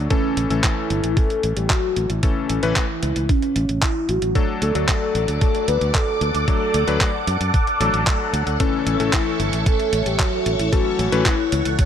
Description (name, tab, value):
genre	italo disco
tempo	113 BPM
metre	4/4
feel	straight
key	unclear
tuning	A4 = 441 Hz
part	clear electric grand piano	stabs	0.0-11.3 s	E3 to B4	-26 LUFS	left 6 dB	digital delay
part	fingered electric bass	bass	0.0-11.8 s	G1 to F#2	-23 LUFS	equal	none
part	soft octave-layered synth lead	melody	0.1-11.9 s	C#4 to B4	-23 LUFS	left 1 dB	chorus, phaser, vintage 12-bit sampler grit
part	detuned 8-bit digital drum machine	drums	0.1-11.9 s	handclaps, hi-hat	-26 LUFS	right 1 dB	none
part	electronic kick drum	drums	0.1-11.9 s	none	-20 LUFS	equal	none
part	phased string machine	sustained chords	4.7-11.9 s	A4 to D6	-25 LUFS	equal	ensemble chorus, phaser
room	light reverb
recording	none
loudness	-17 LUFS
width	side -9 dB against mid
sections	0.0-11.9 A section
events	none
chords	0.1 A; 4.4 D; 8.6 A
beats	| 0.11 0.64 1.17 1.70 | 2.23 2.76 3.29 3.82 | 4.35 4.88 5.42 5.95 | 6.48 7.01 7.54 8.07 | 8.60 9.13 9.66 10.20 | 10.73 11.26 11.79